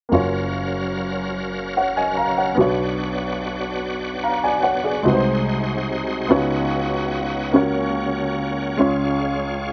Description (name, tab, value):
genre	gospel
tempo	48 BPM (dotted quarters)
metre	6/8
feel	straight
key	F# major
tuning	A4 = 445 Hz
part	clear concert grand piano	accompaniment	0.1-9.7 s	F#1 to A#5	-22 LUFS	equal	none
part	bright tonewheel organ	sustained chords	0.1-9.7 s	B#2 to E#5	-28 LUFS	equal	overdrive, chorus vibrato, fast rotary speaker
room	light reverb, studio reverb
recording	none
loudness	-21 LUFS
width	mono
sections	0.1-9.7 A section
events	none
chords	0.1 F#maj7; 2.6 Bmadd9; 5.1 G#7/B#; 6.3 C#9sus4; 7.6 F#/C#; 8.8 C#